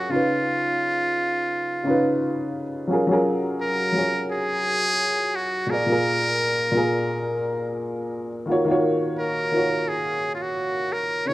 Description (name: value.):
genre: hip hop.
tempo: 86 BPM.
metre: 4/4.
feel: swing 56% on 16ths.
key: F# major.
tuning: A4 = 442 Hz.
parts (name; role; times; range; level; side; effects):
trumpet with metal mute; melody; 0.0-11.3 s; E#4 to C#5; -24 LUFS; equal; plate reverb.
dark upright piano; accompaniment; 0.0-11.3 s; A#2 to D5; -23 LUFS; equal; cassette tape, plate reverb.
room: moderate small room reverb, RT60 0.6 s.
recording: rough home demo mix, faint mains hum.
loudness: -21 LUFS.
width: side -16 dB against mid.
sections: 0.0-2.9 A section; 2.9-11.3 B section.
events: none.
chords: 0.1 C#7; 2.9 F#maj7; 5.7 A#7(no3); 8.5 D#m9.